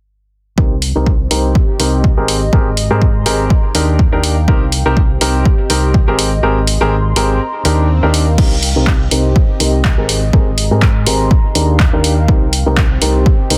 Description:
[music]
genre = piano house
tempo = 123 BPM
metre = 4/4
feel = swing 55% on 16ths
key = unclear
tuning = A4 = 440 Hz
[part]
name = clear upright piano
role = riff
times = 0.6-13.6 s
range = C4 to Bb4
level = -20 LUFS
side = equal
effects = sidechain pumping, low-pass filter, tape echo
[part]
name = overdriven fingered electric bass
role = bass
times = 0.6-13.6 s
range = Ab1 to Ab2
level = -18 LUFS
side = equal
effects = sidechain pumping, low-pass filter
[part]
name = electronic kick drum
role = drums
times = 0.6-13.4 s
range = none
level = -14 LUFS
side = equal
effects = none
[part]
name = warbly tape-like pad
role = texture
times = 0.6-13.6 s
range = C4 to C6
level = -26 LUFS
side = equal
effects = chorus, built-in reverb, sidechain pumping
[part]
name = punchy analog drum machine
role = drums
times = 0.8-13.6 s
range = crash cymbal, handclaps, hi-hat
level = -21 LUFS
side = equal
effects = none
[part]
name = swell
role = sound effects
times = 7.6-8.4 s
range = none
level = -32 LUFS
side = equal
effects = none
[sound]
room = light reverb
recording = dense, heavily limited modern master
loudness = -13 LUFS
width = mono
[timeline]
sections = 0.6-8.4 A section; 8.4-13.6 B section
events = filter sweep on upright piano 0.6-8.4; kick drops out 6.4-8.4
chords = 0.6 Abmaj9; 3.5 Ebmaj7; 4.5 Cm7; 6.2 Abmaj9; 7.4 Ebmaj7; 8.4 Cm7; 10.1 Abmaj9; 11.3 Ebmaj7; 12.3 Cm7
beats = | 0.58 1.06 1.55 2.04 | 2.53 3.02 3.50 3.99 | 4.48 4.97 5.46 5.94 | 6.43 6.92 7.41 7.89 | 8.38 8.87 9.36 9.85 | 10.33 10.82 11.31 11.80 | 12.29 12.77 13.26

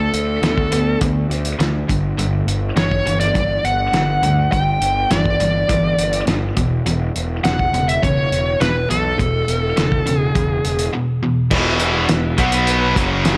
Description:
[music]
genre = classic rock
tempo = 103 BPM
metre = 4/4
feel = straight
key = unclear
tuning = A4 = 440 Hz
[part]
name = smooth overdriven lead guitar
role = melody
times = 0.0-10.9 s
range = A4 to G5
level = -22 LUFS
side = equal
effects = plate reverb
[part]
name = cranked stack guitar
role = riff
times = 0.0-13.4 s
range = E2 to B3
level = -26 LUFS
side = equal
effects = overdrive
[part]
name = overdriven electric guitar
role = riff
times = 0.0-13.4 s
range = E2 to B3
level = -25 LUFS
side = equal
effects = spring reverb
[part]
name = fuzz picked electric bass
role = bass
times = 0.0-13.4 s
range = E1 to D2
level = -25 LUFS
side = equal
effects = overdrive
[part]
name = cloth-damped thuddy drum kit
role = drums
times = 0.1-13.4 s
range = crash cymbal, hi-hat, kick drum, snare drum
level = -24 LUFS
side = equal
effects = none
[part]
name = tonewheel organ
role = sustained chords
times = 11.5-13.4 s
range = G#3 to C#5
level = -32 LUFS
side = equal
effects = none
[sound]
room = moderate studio reverb, RT60 0.8 s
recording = none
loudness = -18 LUFS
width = mono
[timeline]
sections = 0.0-11.5 A section; 11.5-13.4 B section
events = none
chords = 0.0 D5; 1.9 G5; 6.6 Esus4; 11.5 E; 12.4 B5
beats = 0.43 1.02 1.60 | 2.19 2.77 3.35 3.94 | 4.52 5.11 5.69 6.28 | 6.86 7.44 8.03 8.61 | 9.19 9.78 10.36 10.94 | 11.52 12.10 12.68 13.26

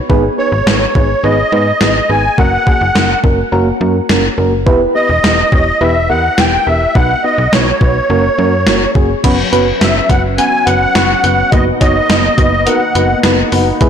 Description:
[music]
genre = synth-pop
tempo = 105 BPM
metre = 4/4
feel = straight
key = B major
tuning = A4 = 440 Hz
[part]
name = mellow FM electric piano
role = accompaniment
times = 0.1-13.9 s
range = A#3 to C#5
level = -16 LUFS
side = right 2 dB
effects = chorus, tremolo
[part]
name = slap-like FM bass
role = bass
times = 0.1-13.9 s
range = E1 to G#2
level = -17 LUFS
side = equal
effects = tube saturation
[part]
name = gated 80s digital drum machine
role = drums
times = 0.1-13.9 s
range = crash cymbal, hi-hat, kick drum, snare drum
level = -14 LUFS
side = equal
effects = gated reverb, gated reverb snare
[part]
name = musette accordion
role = melody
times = 0.4-13.2 s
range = C#5 to G#5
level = -14 LUFS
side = equal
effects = ping-pong delay
[part]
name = chorused pulse-width pad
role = sustained chords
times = 9.2-13.9 s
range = E3 to G#4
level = -21 LUFS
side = equal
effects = none
[part]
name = warbly dusty pluck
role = arpeggios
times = 9.2-13.9 s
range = F#3 to F#6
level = -22 LUFS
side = left 4 dB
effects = chorus, ping-pong delay
[sound]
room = moderate lush hall reverb, RT60 2.6 s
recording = blown-out, overdriven recording, overdrive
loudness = -9 LUFS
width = side -8 dB against mid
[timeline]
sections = 0.0-9.2 A section; 9.2-13.9 B section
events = none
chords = 0.1 G#m; 2.4 F#; 4.7 Em; 7.0 Badd9; 8.1 F#add9; 9.2 F#sus4; 11.5 Bmaj7/F#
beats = | 0.10 0.67 1.24 1.81 | 2.38 2.95 3.52 4.10 | 4.67 5.24 5.81 6.38 | 6.95 7.52 8.10 8.67 | 9.24 9.81 10.38 10.95 | 11.52 12.10 12.67 13.24 | 13.81

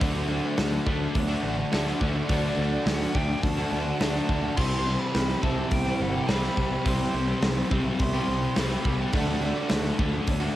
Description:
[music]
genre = rock, shoegaze and dream pop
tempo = 105 BPM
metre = 4/4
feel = straight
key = unclear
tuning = A4 = 440 Hz
[part]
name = electric guitar through a small old amp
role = arpeggios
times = 0.0-10.6 s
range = E3 to G4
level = -36 LUFS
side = right 1 dB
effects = analog chorus, cassette tape, analog delay
[part]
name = biting overdriven guitar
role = riff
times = 0.0-10.6 s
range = C3 to D4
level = -31 LUFS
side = equal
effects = cassette tape
[part]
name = raw garage guitar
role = riff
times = 0.0-10.6 s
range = C3 to G4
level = -33 LUFS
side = right 6 dB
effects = overdrive, reverse reverb, cassette tape
[part]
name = thick fuzz guitar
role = riff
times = 0.0-10.6 s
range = C3 to D4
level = -31 LUFS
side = left 5 dB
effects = distortion, lush chorus, cassette tape
[part]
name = growling fingered electric bass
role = bass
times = 0.0-10.5 s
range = G1 to D2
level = -29 LUFS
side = equal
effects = overdrive
[part]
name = big rock drum kit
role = drums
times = 0.0-10.4 s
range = crash cymbal, hi-hat, kick drum, snare drum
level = -29 LUFS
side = equal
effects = cassette tape
[part]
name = breathy bright jazz flute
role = melody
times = 2.3-9.0 s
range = D5 to C6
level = -35 LUFS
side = equal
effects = cassette tape, analog delay
[sound]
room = light reverb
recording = home recording on cassette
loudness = -23 LUFS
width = side -14 dB against mid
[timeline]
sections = 0.0-10.6 A section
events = none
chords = 0.0 D; 4.6 C; 9.1 D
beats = | 0.02 0.58 1.15 1.72 | 2.29 2.86 3.43 4.00 | 4.57 5.14 5.71 6.28 | 6.85 7.42 8.00 8.56 | 9.14 9.71 10.28

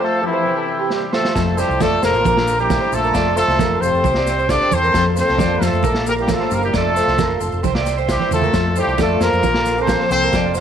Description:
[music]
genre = highlife guitar band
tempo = 134 BPM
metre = 4/4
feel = straight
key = F major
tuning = A4 = 442 Hz
[part]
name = warm horn section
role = melody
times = 0.0-10.6 s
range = E3 to D5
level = -18 LUFS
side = left 1 dB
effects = none
[part]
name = clear trumpet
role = second line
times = 0.0-1.1 s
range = G4 to C5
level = -28 LUFS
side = left 12 dB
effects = none
[part]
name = nylon-string guitar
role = accompaniment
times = 0.0-10.6 s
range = F2 to F4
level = -25 LUFS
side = left 11 dB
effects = none
[part]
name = musette accordion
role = sustained chords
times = 0.0-10.6 s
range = C5 to D6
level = -31 LUFS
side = right 3 dB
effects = none
[part]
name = electric guitar through a small old amp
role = arpeggios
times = 0.0-10.6 s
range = G4 to D5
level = -22 LUFS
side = right 11 dB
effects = tape echo
[part]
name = vintage drum kit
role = drums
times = 0.9-10.6 s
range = kick drum, snare drum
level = -24 LUFS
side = equal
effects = none
[part]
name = hollow-body short-scale fingered electric bass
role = bass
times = 1.4-10.6 s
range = F1 to F2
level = -23 LUFS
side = equal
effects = none
[part]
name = congas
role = percussion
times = 1.4-10.4 s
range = none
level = -26 LUFS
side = right 10 dB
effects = none
[part]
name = maracas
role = percussion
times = 1.4-10.6 s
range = none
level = -36 LUFS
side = left 16 dB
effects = none
[sound]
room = light reverb, small room ambience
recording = 1960s-style stereo with parts hard left and right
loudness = -15 LUFS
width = side -8 dB against mid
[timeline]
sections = 0.0-1.3 A section; 1.3-10.6 B section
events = break 0.0-1.3; drum fill 0.9-1.3, 8.2-8.5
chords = 0.4 C; 1.3 F; 2.2 Bb; 3.1 F; 4.0 C; 4.9 F; 5.8 Bb; 6.7 F; 7.6 C; 8.5 F; 9.4 Bb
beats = 0.45 0.90 | 1.35 1.80 2.25 2.70 | 3.15 3.60 4.05 4.50 | 4.94 5.39 5.84 6.29 | 6.74 7.19 7.63 8.08 | 8.53 8.98 9.43 9.88 | 10.32

